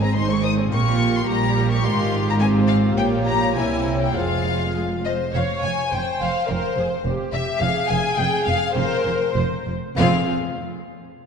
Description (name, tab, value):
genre	quick classical-period movement for string orchestra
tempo	95-108 BPM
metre	2/4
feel	rubato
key	F minor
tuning	A4 = 441 Hz
part	rich studio violin section	melody	0.0-10.3 s	F4 to Eb6	-27 LUFS	left 6 dB	none
part	warm studio violin section	second line	0.0-10.3 s	F4 to Ab5	-26 LUFS	left 4 dB	none
part	warm studio viola section	accompaniment	0.0-10.3 s	G3 to Db5	-25 LUFS	right 1 dB	none
part	warm studio cello section	bass	0.0-10.3 s	F2 to C3	-25 LUFS	right 3 dB	none
part	warm studio double bass section	bass	0.0-10.3 s	F1 to C2	-25 LUFS	right 3 dB	none
room	wet concert hall reverb, RT60 2.5 s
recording	dark, warm production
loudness	-18 LUFS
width	side -6 dB against mid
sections	0.0-5.3 A section; 5.3-10.0 B section; 10.0-11.2 C section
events	none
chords	0.0 Ab; 0.7 Gdim/Bb; 1.3 Bbm6; 1.9 Fm/Ab; 3.0 Gdim/Bb; 3.6 C7b9; 4.2 Fm